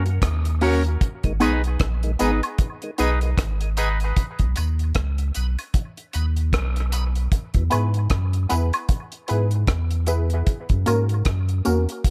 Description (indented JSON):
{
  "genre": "dub reggae",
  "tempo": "76 BPM",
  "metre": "4/4",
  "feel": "swing 58% on 16ths",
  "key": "G# minor",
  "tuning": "A4 = 441 Hz",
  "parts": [
    { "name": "clean electric guitar", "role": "accompaniment", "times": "0.0-4.0 s", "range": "C#4 to D#5", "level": "-30 LUFS", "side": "equal", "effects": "high-pass filter, tape echo" },
    { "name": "warm sub bass", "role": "bass", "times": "0.0-11.9 s", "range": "G#1 to G#2", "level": "-24 LUFS", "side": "equal", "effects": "none" },
    { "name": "deep reggae drum kit", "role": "drums", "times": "0.1-12.1 s", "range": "hi-hat, kick drum, rim click", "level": "-26 LUFS", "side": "equal", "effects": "none" },
    { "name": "filtered dub chord stab", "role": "stabs", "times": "0.6-11.8 s", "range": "A#3 to B4", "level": "-29 LUFS", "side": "equal", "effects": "phaser, high-pass filter, tape echo" },
    { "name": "tonewheel organ", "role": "accompaniment", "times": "1.2-7.6 s", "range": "E2 to D#4", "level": "-35 LUFS", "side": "equal", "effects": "overdrive, slow rotary speaker, high-pass filter" },
    { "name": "tambourine and woodblock", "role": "percussion", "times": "1.4-11.9 s", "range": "none", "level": "-33 LUFS", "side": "equal", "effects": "high-pass filter on perc, tape echo" }
  ],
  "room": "light reverb, small room ambience",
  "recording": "none",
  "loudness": "-22 LUFS",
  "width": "mono",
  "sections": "0.0-12.1 A section",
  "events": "break 0.0-1.0; filter sweep 1.0-7.3",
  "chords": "0.0 F#; 1.0 G#m; 4.2 B; 7.3 E; 10.5 F#"
}